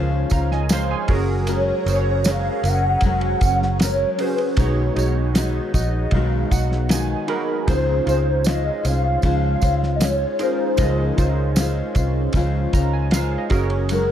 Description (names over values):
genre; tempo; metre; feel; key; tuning
indie pop, bedroom pop; 77 BPM; 4/4; straight; Db major; A4 = 440 Hz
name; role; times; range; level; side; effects
nylon-string guitar; accompaniment; 0.0-14.1 s; Cb3 to C5; -27 LUFS; left 6 dB; wide subtle chorus, warbly pitch drift, plate reverb
warbly lo-fi synth keys; accompaniment; 0.0-14.1 s; Db4 to C6; -27 LUFS; right 5 dB; chorus, cassette tape, plate reverb
phased analog pad; sustained chords; 0.0-14.1 s; F3 to Bb5; -30 LUFS; right 2 dB; phaser, chorus, plate reverb
vintage muted fingered electric bass; bass; 0.0-14.1 s; F1 to Db2; -21 LUFS; equal; none
cloth-damped thuddy drum kit; drums; 0.3-14.1 s; hi-hat, kick drum, ride cymbal, snare drum; -21 LUFS; equal; none
tambourine; percussion; 0.3-14.1 s; none; -33 LUFS; right 5 dB; none
hollow clarinet-like synth lead; melody; 1.5-14.1 s; Bb4 to Gb5; -22 LUFS; left 1 dB; ensemble chorus, slapback echo, plate reverb
room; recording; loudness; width
light reverb; none; -18 LUFS; side -10 dB against mid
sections
0.0-14.1 A section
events
synth keys fill 0.3-1.5, 5.4-7.7, 12.3-13.9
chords
0.0 Dbmaj7; 1.1 Gbadd9; 4.6 Cb6; 7.7 Dbmaj7; 13.5 Gbadd9